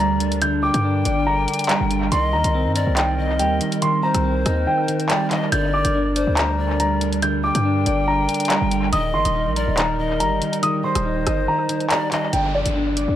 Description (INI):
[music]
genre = hip hop, drill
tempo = 141 BPM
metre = 4/4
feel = half-time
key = G minor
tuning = A4 = 439 Hz
[part]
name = dark upright piano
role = melody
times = 0.0-13.1 s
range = D5 to G6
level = -23 LUFS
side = equal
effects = low-pass filter, analog delay
[part]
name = breathy bright pan flute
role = second line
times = 0.0-12.3 s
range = C5 to G5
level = -27 LUFS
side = left 4 dB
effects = analog delay
[part]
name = clean electric guitar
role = accompaniment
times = 0.0-13.2 s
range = D3 to Eb5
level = -24 LUFS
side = right 1 dB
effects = low-pass filter, analog delay
[part]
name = hollow soft pad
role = sustained chords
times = 0.0-12.3 s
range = Eb3 to Bb4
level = -29 LUFS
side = right 1 dB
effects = chorus
[part]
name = hard-hitting 808-style bass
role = bass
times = 0.0-13.2 s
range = Eb1 to G2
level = -23 LUFS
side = equal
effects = none
[part]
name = drill drum kit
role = drums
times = 0.2-13.1 s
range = handclaps, hi-hat, rim click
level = -25 LUFS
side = equal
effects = analog delay
[part]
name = downlifter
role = sound effects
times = 12.3-13.2 s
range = none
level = -31 LUFS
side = equal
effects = none
[sound]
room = light reverb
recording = echo-heavy mix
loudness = -18 LUFS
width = side -11 dB against mid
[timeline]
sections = 0.0-12.3 A section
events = kick muted 4.7-5.5, 11.5-12.3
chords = 0.0 Gm; 2.1 Cm7; 5.5 Gm; 8.9 Eb; 12.3 G5